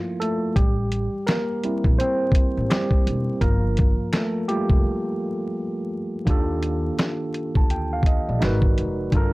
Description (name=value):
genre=lo-fi hip hop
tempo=84 BPM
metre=4/4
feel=swing 62% on 16ths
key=unclear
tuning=A4 = 442 Hz
part: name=tine electric piano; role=accompaniment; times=0.0-9.3 s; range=Eb3 to A5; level=-24 LUFS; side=equal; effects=medium stereo tremolo, cassette tape, low-pass filter, plate reverb
part: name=dusty soul sampler-style drum kit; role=drums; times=0.2-9.3 s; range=hi-hat, kick drum, snare drum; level=-20 LUFS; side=equal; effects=none
part: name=upright bass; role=bass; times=0.6-9.3 s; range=E1 to Eb2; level=-26 LUFS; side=equal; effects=transformer saturation
part: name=finger snaps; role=percussion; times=1.3-4.3 s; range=none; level=-42 LUFS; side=left 1 dB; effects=none
room=little or no reverb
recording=dry, gritty hardware recording, transformer saturation, vinyl crackle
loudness=-20 LUFS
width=side -21 dB against mid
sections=0.0-6.3 A section; 6.3-9.3 B section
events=tine electric piano solo 0.0-6.3; break 4.8-6.3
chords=0.0 Gm9 (rootless); 0.6 Am7; 3.4 Gm9; 6.3 Ebmaj9#11; 8.4 Abm9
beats=| 0.56 1.28 1.99 2.70 | 3.42 4.13 4.85 5.56 | 6.28 6.99 7.70 8.42 | 9.13